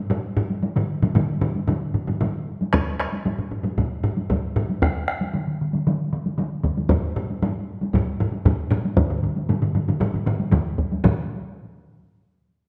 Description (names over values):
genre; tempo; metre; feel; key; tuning
japanese traditional, taiko drum ensemble; 115 BPM; 4/4; straight; none; none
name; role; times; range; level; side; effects
taiko ensemble; percussion; 0.1-11.3 s; none; -29 LUFS; equal; none
taiko ensemble; percussion; 0.1-11.5 s; none; -26 LUFS; equal; none
solo taiko drums; percussion; 0.8-11.5 s; none; -29 LUFS; equal; none
solo taiko drums; percussion; 2.7-11.3 s; none; -26 LUFS; equal; none
room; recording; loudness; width
wet recital hall reverb, RT60 1.5 s; nothing above 10.4 kHz; -23 LUFS; mono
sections
0.0-11.0 A section; 11.0-12.7 B section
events
none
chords
none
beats
0.11 | 0.63 1.16 1.68 2.21 | 2.73 3.25 3.78 4.30 | 4.82 5.34 5.86 6.38 | 6.90 7.42 7.94 8.46 | 8.98 9.49 10.01 10.53 | 11.04